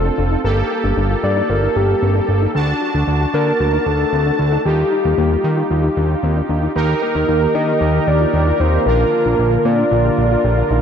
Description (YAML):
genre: synth-pop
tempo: 114 BPM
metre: 4/4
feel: straight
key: unclear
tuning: A4 = 440 Hz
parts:
  - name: soft octave-layered synth lead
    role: melody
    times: 0.0-10.7 s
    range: G4 to Eb5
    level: -20 LUFS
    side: left 2 dB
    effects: chorus, analog delay
  - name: analog synth brass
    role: accompaniment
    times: 0.0-10.8 s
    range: Bb3 to A5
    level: -21 LUFS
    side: right 2 dB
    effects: chorus
  - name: soft round pluck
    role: arpeggios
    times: 0.0-10.8 s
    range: Bb3 to Bb4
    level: -25 LUFS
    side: left 6 dB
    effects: chorus, analog delay
  - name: fat analog bass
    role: bass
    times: 0.0-10.8 s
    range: F1 to Eb3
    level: -17 LUFS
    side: equal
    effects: none
  - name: sweeping resonant pad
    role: sustained chords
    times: 6.8-10.8 s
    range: D3 to G4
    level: -22 LUFS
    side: right 2 dB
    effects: chorus
room: moderate lush hall reverb, RT60 2.5 s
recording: dreamy mix soaked in reverb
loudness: -14 LUFS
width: side -8 dB against mid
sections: 0.0-6.8 A section; 6.8-10.8 B section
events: none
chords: 0.4 Gmadd9; 2.5 D; 4.7 Ebadd9; 6.8 Eb; 8.9 Bb